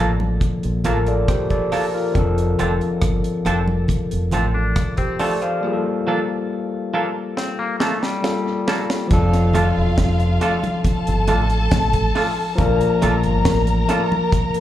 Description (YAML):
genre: lovers rock reggae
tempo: 69 BPM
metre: 4/4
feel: straight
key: F major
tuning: A4 = 437 Hz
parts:
  - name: overdriven tine electric piano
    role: accompaniment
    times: 0.0-14.6 s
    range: F3 to F5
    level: -22 LUFS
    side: left 3 dB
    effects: none
  - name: twangy electric guitar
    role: stabs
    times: 0.0-14.2 s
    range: F3 to A4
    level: -24 LUFS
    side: right 3 dB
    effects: slapback echo
  - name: deep dub fingered electric bass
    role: bass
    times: 0.0-13.8 s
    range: E1 to Bb1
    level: -20 LUFS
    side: equal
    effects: none
  - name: congas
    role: percussion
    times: 0.2-14.5 s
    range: none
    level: -28 LUFS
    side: right 3 dB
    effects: none
  - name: deep reggae drum kit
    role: drums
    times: 0.4-14.6 s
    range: hi-hat, kick drum, rim click, snare drum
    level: -22 LUFS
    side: equal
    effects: tape echo
  - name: twangy electric guitar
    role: arpeggios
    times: 4.5-9.1 s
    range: F3 to D4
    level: -27 LUFS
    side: left 4 dB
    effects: slapback echo
  - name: warm studio string section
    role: second line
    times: 9.1-14.6 s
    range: F4 to Bb5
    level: -23 LUFS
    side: left 2 dB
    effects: tape echo, slapback echo
room: small room ambience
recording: live gig heard through the venue's PA, club reverb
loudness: -17 LUFS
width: side -12 dB against mid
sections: 0.0-9.1 A section; 9.1-14.6 B section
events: break 5.6-9.1; drum fill 7.4-9.1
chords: 0.0 Bbmaj7; 2.1 F6; 5.6 Gm9; 9.1 F6; 12.6 Bbmaj7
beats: 0.41 1.28 | 2.15 3.02 3.89 4.76 | 5.63 6.50 7.37 8.24 | 9.11 9.98 10.85 11.71 | 12.58 13.45 14.32